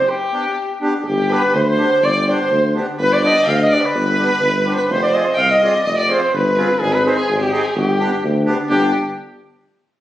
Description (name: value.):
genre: klezmer.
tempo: 126 BPM.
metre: 2/4.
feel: straight.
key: G phrygian dominant.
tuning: A4 = 442 Hz.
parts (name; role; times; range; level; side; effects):
mellow cornet; melody; 0.0-8.9 s; G4 to F5; -18 LUFS; left 1 dB; none.
dark violin; second line; 0.0-8.9 s; G4 to G5; -20 LUFS; right 2 dB; none.
accordion; accompaniment; 0.3-8.9 s; B3 to Ab4; -21 LUFS; equal; none.
breathy tuba; bass; 1.1-8.9 s; F1 to D2; -20 LUFS; equal; none.
room: moderate small room reverb, RT60 0.6 s.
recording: recorded on a phone in the room, studio reverb.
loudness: -14 LUFS.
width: side -13 dB against mid.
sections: 0.0-1.1 A section; 1.1-8.7 A section.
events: speeding up 0.0-9.6; break 0.1-1.1.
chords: 0.1 G; 4.9 Fm; 6.8 Ab; 7.8 G.